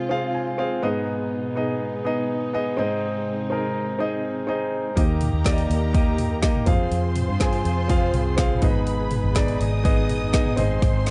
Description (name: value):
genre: piano-driven pop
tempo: 123 BPM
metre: 4/4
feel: straight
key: unclear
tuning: A4 = 440 Hz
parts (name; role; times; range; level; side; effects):
- warm concert grand piano; accompaniment; 0.0-11.1 s; Ab2 to Ab5; -27 LUFS; equal; none
- dark symphonic string section; sustained chords; 0.0-11.1 s; Cb3 to Ab4; -35 LUFS; equal; none
- warm studio violin section; second line; 5.0-11.1 s; Bb4 to Eb6; -35 LUFS; equal; none
- vintage muted fingered electric bass; bass; 5.0-11.1 s; Ab1 to G2; -26 LUFS; equal; none
- deep house drum kit; drums; 5.0-11.1 s; hi-hat, kick drum, snare drum, toms; -25 LUFS; equal; none
- group handclap; percussion; 5.5-10.4 s; none; -43 LUFS; equal; none
room: light reverb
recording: dark, warm production, nothing above 10.9 kHz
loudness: -23 LUFS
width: mono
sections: 0.0-11.1 A section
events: grand piano fill 0.1-1.1; drum fill 10.8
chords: 0.0 Fm; 0.8 Abm; 2.8 Ab; 5.0 Eb; 6.7 Fm; 8.6 Abm; 10.6 Ab